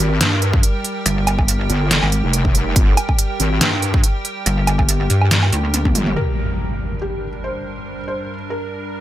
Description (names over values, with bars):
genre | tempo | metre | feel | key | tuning
heavy wobble dubstep | 141 BPM | 4/4 | swing 55% on 16ths, half-time | G minor | A4 = 439 Hz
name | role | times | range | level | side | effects
evolving wavetable pad | sustained chords | 0.0-9.0 s | G2 to G5 | -26 LUFS | right 1 dB | chorus, built-in reverb, sidechain pumping
wobble bass | bass | 0.0-6.1 s | F1 to G2 | -18 LUFS | equal | chorus, overdrive
dubstep drum kit | drums | 0.2-6.3 s | crash cymbal, hi-hat, snare drum, toms, woodblock | -18 LUFS | right 1 dB | low-pass filter on hats, low-pass filter on perc, low-pass filter on snare, low-pass filter on toms, low-pass filter on cymbals
electronic kick drum | drums | 0.5-5.9 s | none | -16 LUFS | equal | none
pulsing pluck wobble bass | bass | 1.1-5.9 s | G1 to G2 | -17 LUFS | equal | chorus, overdrive
felt-muted upright piano | melody | 6.2-9.0 s | G4 to C5 | -28 LUFS | left 1 dB | digital delay
impact | sound effects | 6.2-7.9 s | none | -25 LUFS | equal | none
room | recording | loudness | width
little or no reverb | none | -16 LUFS | side -13 dB against mid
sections
0.0-6.2 A section; 6.2-9.0 B section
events
drop 0.0-6.2; drum fill 5.5-6.2; impact 6.2-7.9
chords
0.0 Gm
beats
0.21 0.63 | 1.06 1.48 1.91 2.33 | 2.76 3.19 3.61 4.04 | 4.46 4.89 5.31 5.74 | 6.16 6.59 7.01 7.44 | 7.87 8.29 8.72